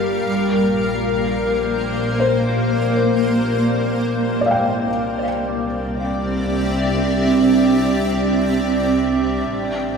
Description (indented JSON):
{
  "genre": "ambient",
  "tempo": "78 BPM",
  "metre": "3/4",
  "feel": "straight",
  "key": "unclear",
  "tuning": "A4 = 440 Hz",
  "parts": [
    { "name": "granular cloud pad", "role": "sustained chords", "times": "0.0-10.0 s", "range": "G3 to F5", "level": "-18 LUFS", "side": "right 1 dB", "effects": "built-in reverb, shimmer reverb" },
    { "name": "felt-muted upright piano", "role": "arpeggios", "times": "0.0-5.3 s", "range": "C5 to G5", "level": "-24 LUFS", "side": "left 2 dB", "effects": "tape echo, shimmer reverb" },
    { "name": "warm studio double bass section", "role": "bass", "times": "0.0-10.0 s", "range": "G1 to C2", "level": "-25 LUFS", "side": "equal", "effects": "tube saturation" },
    { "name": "hand-pumped harmonium", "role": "drone", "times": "0.0-10.0 s", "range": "G3 to D4", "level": "-29 LUFS", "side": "equal", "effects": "none" }
  ],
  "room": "wet plate reverb, RT60 2.9 s",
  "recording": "echo-heavy mix",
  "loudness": "-16 LUFS",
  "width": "side -5 dB against mid",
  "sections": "0.0-10.0 A section",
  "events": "fade-in on double bass section 0.0-10.0; fade-in on harmonium 0.0-10.0",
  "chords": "0.3 Bbsus2; 4.9 Cadd9"
}